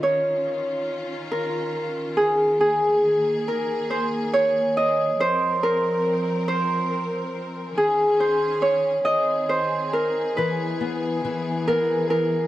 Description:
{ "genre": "children's music, lullaby", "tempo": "46 BPM (dotted quarters)", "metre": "6/8", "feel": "straight", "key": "Db major", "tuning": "A4 = 440 Hz", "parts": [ { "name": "Celtic harp", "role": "melody", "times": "0.0-12.5 s", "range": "Ab4 to Eb5", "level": "-21 LUFS", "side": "right 1 dB", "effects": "tape echo" }, { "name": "rich symphonic string section", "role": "sustained chords", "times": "0.0-12.5 s", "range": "Eb3 to Bb4", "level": "-29 LUFS", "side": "left 1 dB", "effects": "none" }, { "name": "nylon-string guitar", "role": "accompaniment", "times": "10.4-12.5 s", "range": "E3 to B3", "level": "-26 LUFS", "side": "left 4 dB", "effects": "none" } ], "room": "little or no reverb", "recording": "dry, close 1970s-style studio recording", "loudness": "-20 LUFS", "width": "side -14 dB against mid", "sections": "0.0-12.5 A section", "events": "none", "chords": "0.0 Dbadd9; 2.6 Absus2; 5.2 Bbsus2; 7.8 Absus4; 9.1 Ab; 10.4 E" }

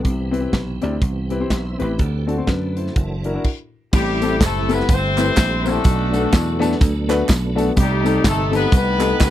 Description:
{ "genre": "uptempo gospel", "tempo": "124 BPM", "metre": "4/4", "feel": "swing 60% on 8ths", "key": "unclear", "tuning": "A4 = 439 Hz", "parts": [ { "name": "warm concert grand piano", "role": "accompaniment", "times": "0.0-9.1 s", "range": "A2 to D5", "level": "-22 LUFS", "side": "left 3 dB", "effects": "none" }, { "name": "tonewheel organ", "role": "sustained chords", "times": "0.0-9.3 s", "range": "D3 to E5", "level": "-28 LUFS", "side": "right 5 dB", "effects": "slow rotary speaker, chorus vibrato" }, { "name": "dry thumbed slap bass", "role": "bass", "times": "0.0-9.3 s", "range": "F#1 to F#2", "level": "-22 LUFS", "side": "equal", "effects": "none" }, { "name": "modern studio drum kit", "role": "drums", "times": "0.0-9.3 s", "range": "crash cymbal, hi-hat, kick drum, snare drum", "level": "-18 LUFS", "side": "equal", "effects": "none" }, { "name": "clear horn section", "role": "melody", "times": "3.9-9.3 s", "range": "G3 to C5", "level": "-21 LUFS", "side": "left 3 dB", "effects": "none" }, { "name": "tambourine and handclaps", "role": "percussion", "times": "3.9-9.3 s", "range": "none", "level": "-31 LUFS", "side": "right 6 dB", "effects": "none" } ], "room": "little or no reverb", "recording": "dry, close 1970s-style studio recording", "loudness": "-16 LUFS", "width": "side -12 dB against mid", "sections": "0.0-3.9 A section; 3.9-9.3 B section", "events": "stop 3.4-3.9", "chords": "0.0 Cmaj7; 2.0 D7; 3.0 F#7b13; 3.9 Am7; 5.8 Bm7; 7.8 Cm6" }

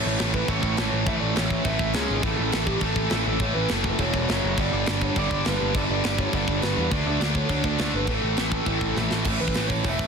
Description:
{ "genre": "punk rock", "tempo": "205 BPM", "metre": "4/4", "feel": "straight", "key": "A mixolydian", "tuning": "A4 = 440 Hz", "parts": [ { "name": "lead guitar through a small cranked amp", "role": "melody", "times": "0.0-10.1 s", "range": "G4 to E5", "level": "-31 LUFS", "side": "right 1 dB", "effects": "overdrive, ping-pong delay" }, { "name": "distorted electric guitar", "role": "riff", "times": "0.0-10.1 s", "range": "E2 to D4", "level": "-29 LUFS", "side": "left 15 dB", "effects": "overdrive" }, { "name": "tight distorted guitar", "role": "riff", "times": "0.0-10.1 s", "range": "E2 to D4", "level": "-28 LUFS", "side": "right 14 dB", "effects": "distortion" }, { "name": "fuzz picked electric bass", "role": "bass", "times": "0.1-10.1 s", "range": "E1 to E2", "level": "-28 LUFS", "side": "left 1 dB", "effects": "overdrive" }, { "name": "tight metal drum kit", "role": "drums", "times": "0.2-10.1 s", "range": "crash cymbal, hi-hat, kick drum, snare drum", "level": "-28 LUFS", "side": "equal", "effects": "soft clipping on kick" } ], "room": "little or no reverb", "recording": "dense, heavily limited modern master", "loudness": "-21 LUFS", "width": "side -6 dB against mid", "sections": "0.0-9.3 A section", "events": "drum fill 9.0", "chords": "0.0 A; 1.9 C#5; 2.2 A5; 4.0 E5; 4.3 F#5; 4.6 G; 6.9 D5; 8.1 A5" }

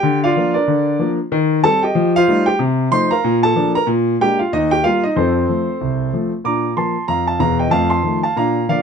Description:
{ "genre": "jazz, stride piano", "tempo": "187 BPM", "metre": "4/4", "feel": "swing 60% on 8ths", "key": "Bb major", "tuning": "A4 = 440 Hz", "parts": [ { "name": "warm concert grand piano", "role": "solo", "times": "0.0-8.8 s", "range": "E1 to D6", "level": "-14 LUFS", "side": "equal", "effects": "none" } ], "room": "moderate booth ambience, RT60 0.2 s", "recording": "dark, warm production", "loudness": "-14 LUFS", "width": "side -6 dB against mid", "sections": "0.0-6.4 A section; 6.4-8.8 B section", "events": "none", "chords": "0.0 Bb/D; 1.3 Cm/Eb; 2.0 F9; 2.6 F7/C; 3.2 Bb; 3.9 Bb7; 4.5 Eb; 5.2 F; 6.4 Bb; 7.7 F7" }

